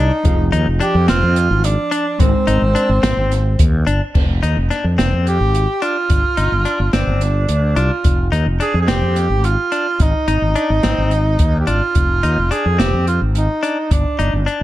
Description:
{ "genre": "progressive instrumental, band music in an uneven meter", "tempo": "215 BPM (eighths)", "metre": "7/8", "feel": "straight", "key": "F dorian", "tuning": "A4 = 439 Hz", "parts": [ { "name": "mellow tenor saxophone", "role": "melody", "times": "0.0-14.5 s", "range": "C4 to Ab4", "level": "-19 LUFS", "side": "right 2 dB", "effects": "none" }, { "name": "vintage hollow-body jazz guitar", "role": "accompaniment", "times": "0.0-4.1 s", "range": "F3 to F5", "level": "-23 LUFS", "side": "right 1 dB", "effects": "double-tracked left and right" }, { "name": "direct-recorded clean electric guitar", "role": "arpeggios", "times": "0.0-14.6 s", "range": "C4 to Eb4", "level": "-24 LUFS", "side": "left 5 dB", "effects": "digital delay" }, { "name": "fretless electric bass", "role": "bass", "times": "0.0-14.6 s", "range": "F1 to F2", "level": "-16 LUFS", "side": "equal", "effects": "none" }, { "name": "open jazz drum kit", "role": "drums", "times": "0.2-14.6 s", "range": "crash cymbal, hi-hat, kick drum, snare drum", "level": "-18 LUFS", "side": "equal", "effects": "none" } ], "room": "little or no reverb", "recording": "none", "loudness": "-14 LUFS", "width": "side -15 dB against mid", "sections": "0.0-4.1 A section; 4.1-14.6 B section", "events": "none", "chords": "0.2 Fm7; 2.2 Abadd9; 4.1 Fm7; 6.1 G5; 8.0 Fm7; 10.0 Ab; 12.0 Fm7; 13.9 G5" }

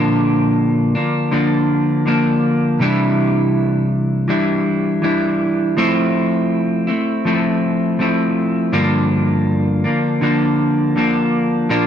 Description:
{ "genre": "indie pop", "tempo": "81 BPM", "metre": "4/4", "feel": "straight", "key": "unclear", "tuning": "A4 = 441 Hz", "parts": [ { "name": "clean electric guitar", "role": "solo", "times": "0.0-11.9 s", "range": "G2 to E4", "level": "-14 LUFS", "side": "equal", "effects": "wide subtle chorus, vibrato effect" } ], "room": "digital ambience", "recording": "dry, close 1970s-style studio recording", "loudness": "-15 LUFS", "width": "side -9 dB against mid", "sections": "0.0-11.9 A section", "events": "none", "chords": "0.0 Bb; 2.8 Cadd9; 5.8 Fmaj7; 8.7 Gm7" }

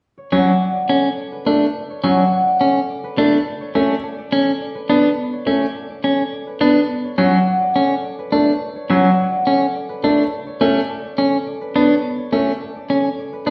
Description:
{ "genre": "classical, minimalist pattern music", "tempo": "105 BPM", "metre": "3/4", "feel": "straight", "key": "D major", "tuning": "A4 = 440 Hz", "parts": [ { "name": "concert harp", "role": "melody", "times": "0.2-13.5 s", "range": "A4 to A5", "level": "-26 LUFS", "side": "equal", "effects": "none" }, { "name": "bright grand piano", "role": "accompaniment", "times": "0.3-13.5 s", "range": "F#3 to B3", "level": "-22 LUFS", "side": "equal", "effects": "none" }, { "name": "clean electric guitar", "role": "arpeggios", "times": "0.3-13.5 s", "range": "C#4 to D4", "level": "-20 LUFS", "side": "equal", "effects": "none" } ], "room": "wet recital hall reverb, RT60 1.4 s", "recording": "heard from further back in the room", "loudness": "-18 LUFS", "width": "mono", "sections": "0.0-13.5 A section", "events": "none", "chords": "0.0 D6; 3.5 Bm9/A; 6.9 D6; 10.3 Bm9/A" }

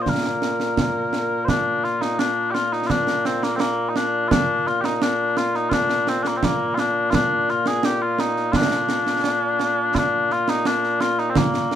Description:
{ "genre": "scottish traditional, Scottish pipe music", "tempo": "85 BPM", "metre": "2/4", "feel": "straight", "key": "Bb major", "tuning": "A4 = 440 Hz", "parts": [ { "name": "mellow small bagpipes", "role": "melody", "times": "0.0-11.8 s", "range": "Bb2 to C5", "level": "-20 LUFS", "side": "left 2 dB", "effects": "none" }, { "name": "concert snare drum and concert bass drum", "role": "drums", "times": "0.1-11.8 s", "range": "none", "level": "-24 LUFS", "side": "right 3 dB", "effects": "none" } ], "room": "little or no reverb", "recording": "minimal, uncompressed stereo recording", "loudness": "-19 LUFS", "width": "side -10 dB against mid", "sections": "0.0-1.5 A section; 1.5-11.8 A section", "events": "none", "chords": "none" }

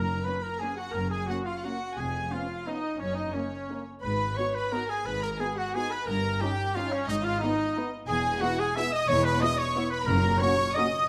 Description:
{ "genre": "classical, orchestral ballroom waltz", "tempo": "177 BPM", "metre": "3/4", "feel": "uneven beats, rubato", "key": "F# major", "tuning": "A4 = 440 Hz", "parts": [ { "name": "clear studio violin section", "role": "melody", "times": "0.0-11.1 s", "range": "C#5 to E6", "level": "-39 LUFS", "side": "equal", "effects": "none" }, { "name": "mellow clarinet", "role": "second line", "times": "0.0-11.1 s", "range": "C#4 to E5", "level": "-40 LUFS", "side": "equal", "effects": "none" }, { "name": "mellow concert flute", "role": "second line", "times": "0.0-11.1 s", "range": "C#5 to E6", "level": "-38 LUFS", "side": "equal", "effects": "none" }, { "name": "warm oboe", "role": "second line", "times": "0.0-11.1 s", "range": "C#4 to E5", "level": "-38 LUFS", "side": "equal", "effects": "none" }, { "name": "warm studio violin section", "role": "second line", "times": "0.0-11.1 s", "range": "C#4 to E5", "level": "-41 LUFS", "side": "equal", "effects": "none" }, { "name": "clear trumpet", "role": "stabs", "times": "0.0-11.1 s", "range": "C#4 to E5", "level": "-35 LUFS", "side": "equal", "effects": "none" }, { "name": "dark studio cello section", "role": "bass", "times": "0.0-10.4 s", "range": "E2 to G#2", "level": "-38 LUFS", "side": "equal", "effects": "none" }, { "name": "warm studio double bass section", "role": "bass", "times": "0.0-10.3 s", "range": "E1 to G#1", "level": "-36 LUFS", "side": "equal", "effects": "none" }, { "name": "timpani", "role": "percussion", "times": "0.0-0.4, 10.1-10.6 s", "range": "F#2", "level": "-37 LUFS", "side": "equal", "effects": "none" }, { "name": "mellow French horn section", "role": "sustained chords", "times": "0.2-10.9 s", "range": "A#3 to F#4", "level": "-42 LUFS", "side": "equal", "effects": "none" }, { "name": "dark studio viola section", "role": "accompaniment", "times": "0.3-10.8 s", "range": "A#3 to F#4", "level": "-39 LUFS", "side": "equal", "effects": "none" } ], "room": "moderate recital hall reverb, RT60 1.6 s", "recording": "none", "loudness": "-28 LUFS", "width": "mono", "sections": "0.0-11.1 A section", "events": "none", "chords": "0.0 F#; 2.0 C#7/E#; 3.0 F#; 4.0 G#m7; 6.1 D#7/G; 7.1 G#m; 8.1 E; 10.1 F#" }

